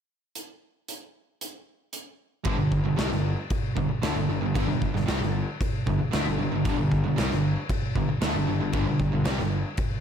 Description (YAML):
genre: hard rock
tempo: 114 BPM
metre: 4/4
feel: straight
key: unclear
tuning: A4 = 439 Hz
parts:
  - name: big rock drum kit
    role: drums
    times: 0.4-9.9 s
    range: crash cymbal, hi-hat, kick drum, snare drum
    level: -28 LUFS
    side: equal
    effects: none
  - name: distorted electric guitar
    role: riff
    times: 2.4-9.6 s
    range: G2 to A3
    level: -29 LUFS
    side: right 7 dB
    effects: distortion
  - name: overdriven semi-hollow guitar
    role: riff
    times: 2.5-9.6 s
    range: G2 to A3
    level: -30 LUFS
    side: left 9 dB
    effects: slapback echo
  - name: fuzz picked electric bass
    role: bass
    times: 2.5-9.6 s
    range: G1 to D2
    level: -30 LUFS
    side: equal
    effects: overdrive
room: moderate recital hall reverb, RT60 1.6 s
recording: none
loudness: -23 LUFS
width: side -8 dB against mid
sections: 0.4-2.5 A section; 2.5-10.0 B section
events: none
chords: 0.4 N.C.; 2.5 G5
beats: | 0.35 0.88 1.40 1.93 | 2.46 2.98 3.50 4.03 | 4.55 5.08 5.60 6.13 | 6.65 7.17 7.70 8.22 | 8.75 9.27 9.79